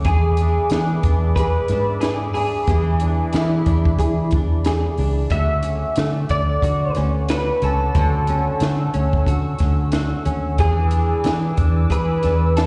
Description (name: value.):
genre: indie pop, bedroom pop.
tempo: 91 BPM.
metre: 4/4.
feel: swing 60% on 16ths.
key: unclear.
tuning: A4 = 436 Hz.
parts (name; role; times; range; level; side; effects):
nylon-string guitar; accompaniment; 0.0-12.7 s; D3 to G#4; -29 LUFS; equal; analog chorus, warbly pitch drift, slapback echo.
hollow soft pad; sustained chords; 0.0-12.7 s; G#4 to E6; -35 LUFS; equal; chorus.
compact cocktail drum kit; drums; 0.0-12.7 s; hi-hat, kick drum, snare drum; -24 LUFS; equal; none.
electric guitar at the edge of break-up; melody; 0.1-12.7 s; E4 to E5; -26 LUFS; equal; analog chorus, slapback echo, tape echo.
vintage muted fingered electric bass; bass; 0.1-12.7 s; C#2 to E3; -22 LUFS; equal; none.
room: studio ambience.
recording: live gig heard through the venue's PA, recital hall reverb, nothing above 10.5 kHz.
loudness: -19 LUFS.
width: mono.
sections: 0.0-12.7 A section.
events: none.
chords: 0.1 E7; 5.3 Dmaj7; 10.6 E7.